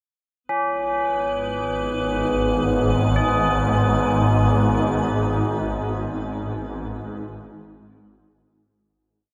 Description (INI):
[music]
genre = dark ambient drone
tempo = free time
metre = none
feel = none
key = G# minor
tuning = A4 = 443 Hz
[part]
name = swarming drone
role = drone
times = 1.5-9.0 s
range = G#1 to G#2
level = -24 LUFS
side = equal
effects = built-in reverb, phaser
[part]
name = icy glass pad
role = texture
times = 1.0-8.9 s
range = B3 to B4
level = -28 LUFS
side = equal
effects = chorus, built-in reverb, shimmer reverb
[part]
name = tubular bells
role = arpeggios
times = 0.5-9.3 s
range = C#4 to G#4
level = -28 LUFS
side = equal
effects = tape echo, shimmer reverb
[sound]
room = wet huge ambient reverb, RT60 7.8 s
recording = none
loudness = -22 LUFS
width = mono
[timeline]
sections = 0.5-8.9 A section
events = fade-out on ambient pad 0.5-8.9; fade-out on tubular bells 0.5-8.9; fade-out 4.7-8.9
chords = 0.5 G#madd11